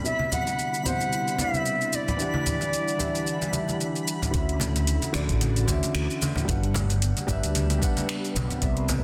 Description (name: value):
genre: sunset chillout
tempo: 112 BPM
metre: 4/4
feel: swing 56% on 16ths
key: D major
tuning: A4 = 438 Hz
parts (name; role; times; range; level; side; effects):
- dark grand piano; accompaniment; 0.0-9.0 s; B2 to F#5; -33 LUFS; equal; delay
- soft string machine; sustained chords; 0.0-9.0 s; D3 to F#5; -38 LUFS; equal; ensemble chorus
- twinkling granular texture; texture; 0.0-4.3 s; B5; -41 LUFS; equal; built-in reverb
- reedy silver concert flute; melody; 0.1-3.8 s; D5 to F#5; -31 LUFS; equal; delay
- deep house drum kit; drums; 0.1-9.0 s; finger snaps, hi-hat, shaker; -34 LUFS; equal; overdrive, small room reverb, soft clipping on snare
- congas; percussion; 0.2-9.0 s; none; -35 LUFS; equal; none
- fretless electric bass; bass; 4.3-9.0 s; G1 to D2; -28 LUFS; equal; tube saturation, ensemble chorus
- electronic kick drum; drums; 4.3-8.7 s; none; -30 LUFS; equal; small room reverb
room: moderate plate reverb, RT60 2.0 s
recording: dense, heavily limited modern master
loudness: -26 LUFS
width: mono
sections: 0.0-4.3 A section; 4.3-9.0 B section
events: filter sweep on string machine 0.0-4.3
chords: 0.1 Cmaj9; 2.2 Em9; 4.3 Dmaj9; 6.5 Gmaj7